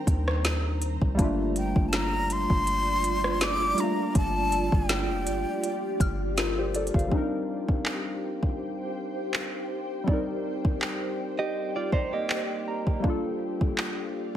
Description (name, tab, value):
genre	contemporary R&B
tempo	81 BPM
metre	4/4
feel	swing 54% on 16ths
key	unclear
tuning	A4 = 437 Hz
part	breathy jazz flute	melody	0.0-6.2 s	G5 to D6	-29 LUFS	left 1 dB	none
part	warm analog keys	accompaniment	0.0-14.4 s	G3 to Bb5	-31 LUFS	left 1 dB	chorus
part	ethereal airy pad	sustained chords	0.0-14.4 s	Eb3 to Bb5	-35 LUFS	right 1 dB	ensemble chorus, built-in reverb, tremolo, sidechain pumping
part	mallet-like synth pluck	texture	0.0-7.4 s	C6 to F6	-42 LUFS	left 1 dB	chorus, tape echo
part	soft 808-style bass	bass	0.1-7.1 s	F1 to Eb2	-30 LUFS	equal	none
part	smooth R&B drum kit	drums	0.1-14.0 s	handclaps, hi-hat, kick drum, rim click, snare drum	-27 LUFS	equal	none
part	direct-recorded clean electric guitar	arpeggios	11.4-13.0 s	Bb3 to Eb5	-31 LUFS	right 4 dB	tape echo
room	light reverb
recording	none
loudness	-25 LUFS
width	side -11 dB against mid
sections	0.0-7.1 A section; 7.1-14.4 B section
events	synth keys fill 11.6-13.0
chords	0.0 Cm7; 1.2 Gm7; 7.1 Cm7; 13.0 Gm7